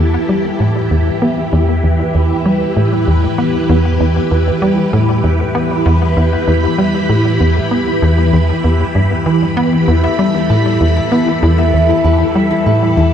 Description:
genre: ambient, sequencer-driven space music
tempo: 97 BPM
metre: 4/4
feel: straight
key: E minor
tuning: A4 = 440 Hz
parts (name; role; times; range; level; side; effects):
- phased string machine; sustained chords; 0.0-13.1 s; E3 to B5; -16 LUFS; equal; ensemble chorus, phaser
- tight sequencer bass; riff; 0.0-13.1 s; E2 to B3; -13 LUFS; equal; analog chorus, ping-pong delay
- concert harp; arpeggios; 9.9-13.1 s; E4 to E5; -16 LUFS; moving between left 7 dB and equal; auto-pan, ping-pong delay
room: wet huge ambient reverb, RT60 7.8 s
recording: in a vast, echoing space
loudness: -11 LUFS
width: side -9 dB against mid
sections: 0.0-13.1 A section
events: none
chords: 0.0 Em

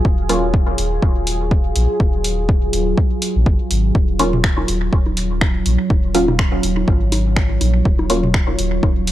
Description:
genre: dub techno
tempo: 123 BPM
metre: 4/4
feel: swing 56% on 16ths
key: Eb minor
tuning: A4 = 440 Hz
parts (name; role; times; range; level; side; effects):
- deep dark ambient pad; sustained chords; 0.0-9.1 s; Gb3 to Db5; -23 LUFS; right 1 dB; chorus, built-in reverb, sidechain pumping
- soft dub sub bass; bass; 0.0-9.1 s; Eb1 to Bb1; -20 LUFS; equal; sidechain pumping
- electronic kick drum; drums; 0.0-8.9 s; none; -16 LUFS; equal; overdrive
- filtered dub chord stab; stabs; 0.3-0.5, 4.2-8.3 s; Gb3 to F4; -21 LUFS; equal; chorus, phaser, sidechain pumping, dub echo
- punchy analog drum machine; drums; 0.3-9.1 s; finger snaps, hi-hat; -24 LUFS; equal; overdrive, dub echo
- electronic bongos and toms; percussion; 4.2-8.9 s; none; -26 LUFS; equal; overdrive, sidechain pumping on perc, sidechain pumping on toms, dub echo
room: little or no reverb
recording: dry, gritty hardware recording, transformer saturation, cassette tape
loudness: -14 LUFS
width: side -13 dB against mid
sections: 0.0-9.1 A section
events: none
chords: 0.0 Ebm9

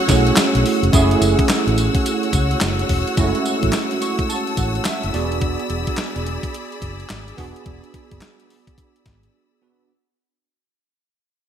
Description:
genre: R&B, new jack swing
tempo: 107 BPM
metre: 4/4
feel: swing 63% on 16ths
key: F# minor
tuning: A4 = 440 Hz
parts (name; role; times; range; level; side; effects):
- bell-like tine electric piano; accompaniment; 0.0-9.9 s; G#3 to C#6; -21 LUFS; right 4 dB; ensemble chorus
- rich studio string section; sustained chords; 0.0-9.9 s; F#4 to E6; -24 LUFS; left 1 dB; none
- vintage muted fingered electric bass; bass; 0.1-9.3 s; E1 to C#2; -21 LUFS; left 1 dB; none
- crisp 8-bit digital drum machine; drums; 0.1-9.3 s; handclaps, hi-hat, kick drum, snare drum, tambourine; -21 LUFS; left 1 dB; gated reverb
room: moderate plate reverb, RT60 1.5 s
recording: bright 1980s-style digital production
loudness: -16 LUFS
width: side -9 dB against mid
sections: 0.9-9.9 A section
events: fade-out 0.9-9.9; tine electric piano fill 3.7-5.4; break 9.3-9.9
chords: 0.0 F#m7; 5.1 E7

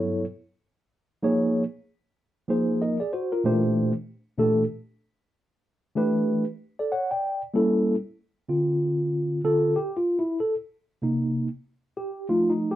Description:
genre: hip hop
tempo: 95 BPM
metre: 4/4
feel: swing 61% on 16ths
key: D minor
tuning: A4 = 440 Hz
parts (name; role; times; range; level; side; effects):
- mellow tine electric piano; solo; 0.0-12.8 s; G2 to G5; -22 LUFS; equal; medium stereo tremolo
room: moderate studio ambience, RT60 0.5 s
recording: band playing live in one room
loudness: -23 LUFS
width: side -13 dB against mid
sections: 0.0-8.5 A section; 8.5-12.8 B section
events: tine electric piano solo 8.5-12.8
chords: 0.0 Gmaj7; 0.9 Eb5; 2.2 G#add9; 3.4 Bbmaj7; 6.0 Em7; 7.2 A7b9; 8.5 Dm7; 11.0 Cm7

